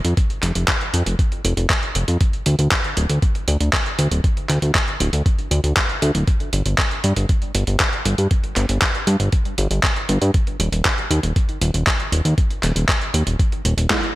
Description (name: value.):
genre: italo disco.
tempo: 118 BPM.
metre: 4/4.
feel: straight.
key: unclear.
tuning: A4 = 440 Hz.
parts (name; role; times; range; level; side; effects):
fat analog bass; bass; 0.0-13.9 s; D1 to G2; -19 LUFS; equal; none.
dusty soul sampler-style drum kit; drums; 0.0-14.1 s; handclaps, hi-hat, snare drum; -22 LUFS; right 1 dB; overdrive.
electronic kick drum; drums; 0.2-14.0 s; none; -20 LUFS; equal; overdrive.
room: light reverb.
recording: none.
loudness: -17 LUFS.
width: side -17 dB against mid.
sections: 0.0-14.2 A section.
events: drum fill 13.9.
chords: none.